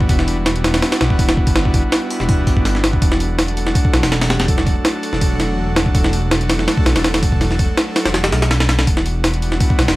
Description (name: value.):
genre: drum and bass, jungle.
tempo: 164 BPM.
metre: 4/4.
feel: straight.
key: E minor.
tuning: A4 = 440 Hz.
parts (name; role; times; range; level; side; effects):
airy breathy pad; sustained chords; 0.0-10.0 s; F#3 to A4; -22 LUFS; right 1 dB; chorus.
dark detuned saw bass; bass; 0.0-10.0 s; E1 to B1; -19 LUFS; equal; none.
jungle sampler-style drum kit; drums; 0.0-10.0 s; hi-hat, kick drum, snare drum; -16 LUFS; equal; none.
room: little or no reverb.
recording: vinyl crackle.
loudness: -14 LUFS.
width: side -18 dB against mid.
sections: 0.0-8.9 A section; 8.9-10.0 A section.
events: drop 0.0-8.9, 8.9-10.0.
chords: 0.0 Em9; 3.0 D/E; 8.9 Em9.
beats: | 0.09 0.46 0.82 1.19 | 1.56 1.92 2.29 2.65 | 3.02 3.38 3.75 4.12 | 4.48 4.85 5.21 5.58 | 5.95 6.31 6.68 7.04 | 7.41 7.78 8.14 8.51 | 8.87 9.24 9.60.